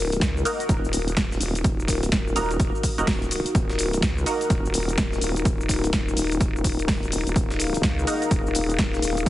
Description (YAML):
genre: bass house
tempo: 126 BPM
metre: 4/4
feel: swing 62% on 16ths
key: Eb minor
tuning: A4 = 440 Hz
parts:
  - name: dark analog pad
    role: sustained chords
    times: 0.0-9.3 s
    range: Eb4 to F5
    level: -31 LUFS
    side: left 1 dB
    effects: chorus, sidechain pumping
  - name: vowel-sweep wobble bass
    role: bass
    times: 0.0-9.3 s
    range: Eb1 to Db2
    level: -26 LUFS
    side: equal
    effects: chorus, sidechain pumping
  - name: warbly tape-like pad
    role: texture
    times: 0.0-9.3 s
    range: Eb4 to F5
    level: -32 LUFS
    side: left 6 dB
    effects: chorus, built-in reverb, sidechain pumping
  - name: breakbeat sampler-style drum kit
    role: drums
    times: 0.1-9.3 s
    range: hi-hat, snare drum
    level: -37 LUFS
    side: equal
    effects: none
  - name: house drum kit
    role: drums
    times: 0.1-9.3 s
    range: hi-hat, shaker, snare drum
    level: -28 LUFS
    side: equal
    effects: small room ambience
  - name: electronic kick drum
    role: drums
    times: 0.2-9.3 s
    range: none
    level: -24 LUFS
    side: equal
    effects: small room ambience
  - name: band-passed chord stab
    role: stabs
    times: 0.5-9.3 s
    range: Bb3 to Bb4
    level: -31 LUFS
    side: right 3 dB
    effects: phaser, ensemble chorus, sidechain pumping, tape echo
room: light reverb, digital ambience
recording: heavily compressed radio sound, multiband compression, nothing above 11.0 kHz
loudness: -21 LUFS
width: side -15 dB against mid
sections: 0.0-9.3 A section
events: none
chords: 0.0 Ebm